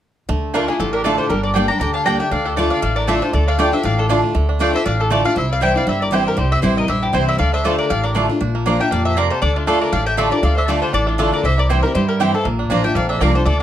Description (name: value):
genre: bluegrass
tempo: 236 BPM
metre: 4/4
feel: swing 55% on 8ths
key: D minor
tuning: A4 = 436 Hz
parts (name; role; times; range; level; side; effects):
- bluegrass banjo; melody; 0.3-13.6 s; E3 to G4; -26 LUFS; right 6 dB; tape echo
- picked steel-string acoustic guitar; accompaniment; 0.3-13.6 s; F2 to G4; -21 LUFS; left 2 dB; none
- upright bass; bass; 0.3-13.6 s; G1 to G2; -20 LUFS; equal; none
- mandolin; melody; 0.5-13.6 s; F4 to Bb5; -21 LUFS; left 2 dB; none
- mandolin; stabs; 0.5-13.3 s; A3 to Bb5; -21 LUFS; right 5 dB; none
- clear fiddle; second line; 0.6-13.6 s; D4 to G5; -28 LUFS; left 4 dB; none
room: light reverb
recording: close, detailed microphones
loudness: -15 LUFS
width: side -11 dB against mid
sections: 0.3-8.4 A section; 8.4-13.6 B section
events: none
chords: 0.3 Dm; 1.3 Gm; 2.3 Dm; 5.4 C; 7.4 Dm; 8.4 Bb; 9.4 Dm; 11.4 C; 12.5 Bb